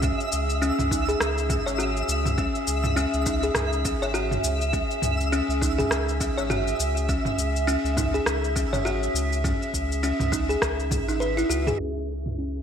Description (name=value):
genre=organic downtempo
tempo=102 BPM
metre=4/4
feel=swing 58% on 16ths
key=C# minor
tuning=A4 = 440 Hz
part: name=warbly tape-like pad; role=sustained chords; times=0.0-12.6 s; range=C#4 to E5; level=-30 LUFS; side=equal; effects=chorus, built-in reverb, sidechain pumping
part: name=buzzing kalimba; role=arpeggios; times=0.0-12.6 s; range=C#4 to C#5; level=-28 LUFS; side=left 1 dB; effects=low-pass filter, digital delay
part: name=warm sub bass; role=bass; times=0.0-12.6 s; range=G#1 to C#2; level=-28 LUFS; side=equal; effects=sidechain pumping
part: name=deep house drum kit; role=drums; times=0.0-12.4 s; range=cabasa, hi-hat, rim click, toms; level=-30 LUFS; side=equal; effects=overdrive, low-pass filter on cymbals, low-pass filter on perc, low-pass filter on toms, low-pass filter on snare, low-pass filter on hats, low-pass filter on room, gated reverb
part: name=electronic kick drum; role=drums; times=0.0-11.1 s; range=none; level=-30 LUFS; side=equal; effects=overdrive
part: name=twinkling granular texture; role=texture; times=0.0-11.8 s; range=E5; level=-33 LUFS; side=equal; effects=built-in reverb
room=moderate lush hall reverb, RT60 2.8 s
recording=bright 1980s-style digital production, low-pass filter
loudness=-22 LUFS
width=side -8 dB against mid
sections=0.0-11.8 A section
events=none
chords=0.0 C#m